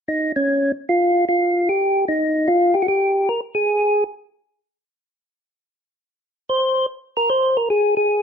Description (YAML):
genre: jazz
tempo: 149 BPM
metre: 4/4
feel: swing 67% on 8ths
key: F minor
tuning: A4 = 440 Hz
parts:
  - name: percussive tonewheel organ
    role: solo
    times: 0.1-4.0, 6.5-8.2 s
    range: Db4 to C5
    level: -16 LUFS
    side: equal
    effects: slow rotary speaker
room: light reverb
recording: close, detailed microphones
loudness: -17 LUFS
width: side -7 dB against mid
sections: 0.0-6.5 A section; 6.5-8.2 A section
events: none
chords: none